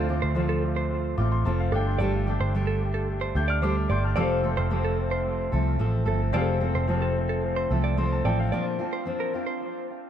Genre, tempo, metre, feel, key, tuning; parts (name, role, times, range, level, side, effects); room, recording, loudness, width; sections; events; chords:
acoustic pop; 110 BPM; 4/4; straight; F major; A4 = 440 Hz
clear baby grand piano; accompaniment; 0.0-8.6 s; C4 to G6; -34 LUFS; left 4 dB; dub echo
fingerpicked steel-string acoustic guitar; accompaniment; 0.0-10.1 s; F2 to A4; -28 LUFS; equal; dub echo
vintage muted picked electric bass; bass; 0.0-8.5 s; F1 to D2; -26 LUFS; equal
direct-recorded clean electric guitar; arpeggios; 0.2-9.9 s; A4 to D5; -33 LUFS; right 5 dB; harmonic tremolo
light reverb; echo-heavy mix; -23 LUFS; side -9 dB against mid
0.0-8.5 A section; 8.5-10.1 B section
0.0 Dm7; 1.7 Gsus2; 4.2 F; 8.5 Bbadd9